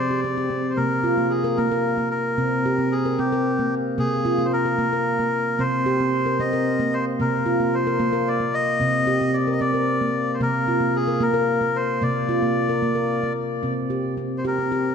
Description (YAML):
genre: world meditative, meditative tuned percussion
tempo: 75 BPM (dotted quarters)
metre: 6/8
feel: straight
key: C minor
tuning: A4 = 438 Hz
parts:
  - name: melodica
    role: melody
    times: 0.0-14.9 s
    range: G4 to Eb5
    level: -24 LUFS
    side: left 1 dB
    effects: ping-pong delay
  - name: handpan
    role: arpeggios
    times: 0.0-14.9 s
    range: C3 to Bb4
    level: -21 LUFS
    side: equal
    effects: none
room: wet scoring stage reverb, RT60 1.6 s, studio reverb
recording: none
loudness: -20 LUFS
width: side -6 dB against mid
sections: 0.8-13.6 A section; 13.6-14.9 B section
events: none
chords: 0.0 C5; 0.8 Bb5/C; 2.4 C5; 4.0 Bb5/C; 5.6 Cm; 7.2 Bb5/C; 8.8 Cm; 10.4 Bb/C; 13.6 C5